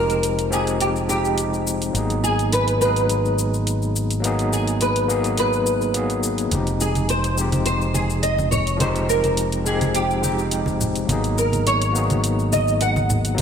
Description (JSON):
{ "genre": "sunset chillout", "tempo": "105 BPM", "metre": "4/4", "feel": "swing 53% on 16ths", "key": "F minor", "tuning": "A4 = 441 Hz", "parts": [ { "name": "nylon-string guitar", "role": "melody", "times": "0.0-13.3 s", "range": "G4 to Gb5", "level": "-23 LUFS", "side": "equal", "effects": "ensemble chorus, ping-pong delay" }, { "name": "overdriven tine electric piano", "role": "accompaniment", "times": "0.0-13.4 s", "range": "F3 to Ab4", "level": "-24 LUFS", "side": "left 1 dB", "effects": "fast tremolo, auto-pan, ping-pong delay" }, { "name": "modern bright fingered electric bass", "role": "bass", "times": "0.0-13.4 s", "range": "F1 to Ab1", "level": "-24 LUFS", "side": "equal", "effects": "none" }, { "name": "electronic hi-hat and shaker", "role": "drums", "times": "0.1-13.4 s", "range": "none", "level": "-29 LUFS", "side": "left 2 dB", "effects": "none" }, { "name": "congas", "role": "percussion", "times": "6.5-13.4 s", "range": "none", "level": "-28 LUFS", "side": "right 2 dB", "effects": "none" } ], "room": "wet plate reverb, RT60 2.7 s", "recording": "bright 1980s-style digital production", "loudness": "-18 LUFS", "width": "side -7 dB against mid", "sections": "0.0-13.4 A section", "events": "none", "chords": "0.0 Fm9; 1.9 Abm9; 6.5 Fm9; 11.1 Abm9", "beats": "0.23 0.81 1.38 | 1.95 2.52 3.09 3.66 | 4.23 4.80 5.38 5.95 | 6.52 7.09 7.66 8.23 | 8.80 9.38 9.95 10.52 | 11.09 11.66 12.23 12.80 | 13.38" }